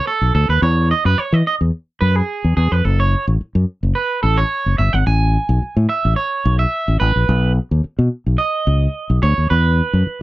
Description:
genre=disco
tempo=108 BPM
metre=4/4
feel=straight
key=unclear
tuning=A4 = 439 Hz
part: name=electric guitar at the edge of break-up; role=accompaniment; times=0.0-10.2 s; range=G#4 to G#5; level=-19 LUFS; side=right 4 dB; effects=none
part: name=fingered electric bass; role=bass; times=0.2-10.1 s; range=F#1 to E3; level=-15 LUFS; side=left 1 dB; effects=none
room=little or no reverb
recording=dry, close 1970s-style studio recording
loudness=-14 LUFS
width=side -17 dB against mid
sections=0.0-10.2 A section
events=clean electric guitar solo 0.0-10.2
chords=0.0 B; 0.6 Emaj13; 2.8 F#m; 5.1 Amaj9; 7.3 B; 9.5 E5

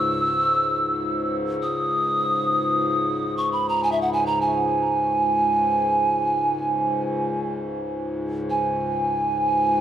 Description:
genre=world meditative, free-time meditation music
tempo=free time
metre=none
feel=none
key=C# minor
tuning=A4 = 440 Hz
part: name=mellow hollow polished pan flute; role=melody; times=0.0-9.8 s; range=E5 to E6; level=-21 LUFS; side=right 2 dB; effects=analog delay
part: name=hand-pumped harmonium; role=drone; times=0.0-9.8 s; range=C#2 to G#2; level=-26 LUFS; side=left 2 dB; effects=none
room=wet spring reverb, RT60 1.4 s, studio reverb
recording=echo-heavy mix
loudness=-20 LUFS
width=side -10 dB against mid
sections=0.0-9.8 A section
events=none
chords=none

